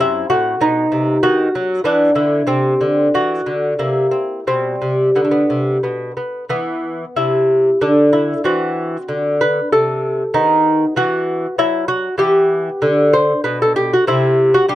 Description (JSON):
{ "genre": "classical, baroque-style dance for lute", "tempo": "87-99 BPM", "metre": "3/4", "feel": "rubato", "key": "unclear", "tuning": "A4 = 440 Hz", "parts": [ { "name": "lute", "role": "solo", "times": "0.0-14.8 s", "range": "F#2 to C5", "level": "-14 LUFS", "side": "equal", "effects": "none" } ], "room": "little or no reverb", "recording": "dry, close 1970s-style studio recording", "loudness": "-14 LUFS", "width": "side -14 dB against mid", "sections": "0.0-6.5 A section; 6.5-14.8 A section", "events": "none", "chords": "0.0 F#m7b5; 0.6 B; 1.8 E5; 2.5 C; 3.8 C7; 4.5 Am11/B (rootless); 5.8 N.C.; 6.5 F#m7b5; 10.3 B/D#; 12.2 Em; 14.1 C5", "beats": "| 0.60 1.22 1.84 | 2.47 3.14 3.80 | 4.47 5.16 5.83 | 6.51 7.18 7.83 | 8.47 9.10 9.72 | 10.34 10.97 11.58 | 12.20 12.82 13.44 | 14.06 14.68" }